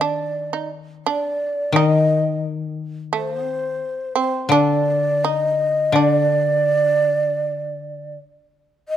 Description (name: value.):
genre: japanese traditional, Japanese chamber music.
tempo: 78-89 BPM.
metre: 4/4.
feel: rubato.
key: unclear.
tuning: A4 = 439 Hz.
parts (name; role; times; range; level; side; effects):
breathy mellow shakuhachi; melody; 0.0-9.0 s; C5 to Eb5; -20 LUFS; right 1 dB; none.
shamisen; second line; 0.0-8.1 s; C4 to Eb4; -23 LUFS; right 7 dB; none.
koto; accompaniment; 0.0-8.1 s; D3 to Eb3; -22 LUFS; left 4 dB; none.
room: light reverb.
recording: close, detailed microphones.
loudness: -17 LUFS.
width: side -10 dB against mid.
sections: 0.0-8.9 A section.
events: none.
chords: none.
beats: | 0.36 1.05 1.74 2.43 | 3.12 3.80 4.50 5.22 | 5.93 6.65 7.39 8.15 | 8.89.